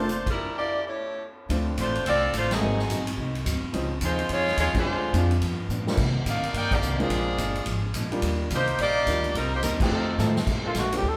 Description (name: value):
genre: jazz, big band swing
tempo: 214 BPM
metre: 4/4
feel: swing 62% on 8ths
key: Bb major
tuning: A4 = 440 Hz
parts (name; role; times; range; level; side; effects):
- edgy saxophone section; melody; 0.0-10.3 s; F3 to G5; -29 LUFS; equal; none
- bright upright piano; accompaniment; 0.0-11.0 s; F3 to A4; -33 LUFS; equal; none
- upright bass; bass; 0.0-11.2 s; F1 to C3; -31 LUFS; equal; none
- picked steel-string acoustic guitar; accompaniment; 0.1-11.2 s; F2 to C5; -36 LUFS; equal; none
- swinging big-band drum kit; drums; 0.1-11.1 s; crash cymbal, hi-hat, kick drum, ride cymbal, snare drum; -33 LUFS; equal; none
- warm saxophone section; sustained chords; 10.6-10.7 s; D3 to A4; -39 LUFS; equal; none
- warm trumpet; melody; 10.7-11.2 s; F4 to A4; -29 LUFS; equal; none
room: moderate large studio reverb, RT60 1.3 s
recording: band playing live in one room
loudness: -26 LUFS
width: mono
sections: 0.0-1.5 A section; 1.5-10.5 B section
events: band accent 0.2, 2.5, 4.7, 6.7, 9.8; stop 0.4-1.5; drum fill 5.7, 10.2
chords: 0.4 Em7b5; 0.9 A7; 1.5 Dm7; 2.6 Ab7; 3.7 Dbmaj9; 4.9 Dm7b5; 5.4 G7; 6.0 Cm9; 7.1 Bb7; 8.2 Ebmaj7; 9.3 Cm7; 9.9 F7; 10.5 Bbmaj9